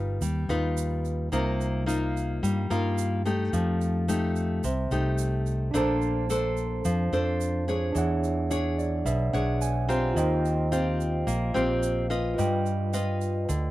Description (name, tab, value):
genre	bossa nova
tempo	108 BPM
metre	4/4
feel	straight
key	Bb major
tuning	A4 = 440 Hz
part	nylon-string guitar	accompaniment	0.0-13.7 s	B2 to Eb5	-28 LUFS	left 2 dB	none
part	fretless electric bass	bass	0.0-13.7 s	G1 to G2	-28 LUFS	right 1 dB	none
part	egg shaker	percussion	0.2-13.7 s	none	-42 LUFS	right 20 dB	none
part	barky tine electric piano	accompaniment	5.7-13.7 s	D4 to Bb5	-31 LUFS	right 4 dB	none
room	light reverb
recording	dry, close 1970s-style studio recording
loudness	-24 LUFS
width	side -16 dB against mid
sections	0.0-13.7 A section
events	tine electric piano fill 8.5-10.2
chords	0.0 Gaug7; 1.3 Cm7; 3.5 F9; 5.7 Bbmaj9; 8.0 E13; 10.2 Eb69; 12.4 G7b13